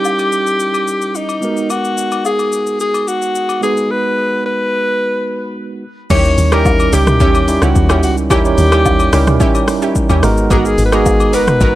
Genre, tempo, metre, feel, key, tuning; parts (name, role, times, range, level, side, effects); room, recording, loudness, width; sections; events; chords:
amapiano; 109 BPM; 4/4; straight; G# minor; A4 = 440 Hz
breathy alto saxophone; melody; 0.0-11.8 s; D#4 to C#5; -16 LUFS; left 1 dB; tape echo
bright tine electric piano; accompaniment; 0.0-11.8 s; G3 to C#5; -18 LUFS; right 3 dB; slow stereo tremolo
deep house drum kit; drums; 0.0-11.7 s; crash cymbal, hi-hat, kick drum, rim click, shaker, toms; -16 LUFS; equal
woodblock and agogo bells; percussion; 0.0-11.3 s; -24 LUFS; left 6 dB
analog pluck; stabs; 6.1-11.8 s; B3 to A#4; -21 LUFS; right 2 dB; chorus
deep log drum bass; bass; 6.1-11.8 s; F#1 to D#2; -15 LUFS; left 1 dB
light reverb; -11 LUFS; side -15 dB against mid
0.0-6.1 A section; 6.1-11.8 B section
drop 6.1-11.8
0.0 D#7b9; 1.4 G#m9; 5.8 N.C.; 6.1 D#7b9; 10.2 G#m9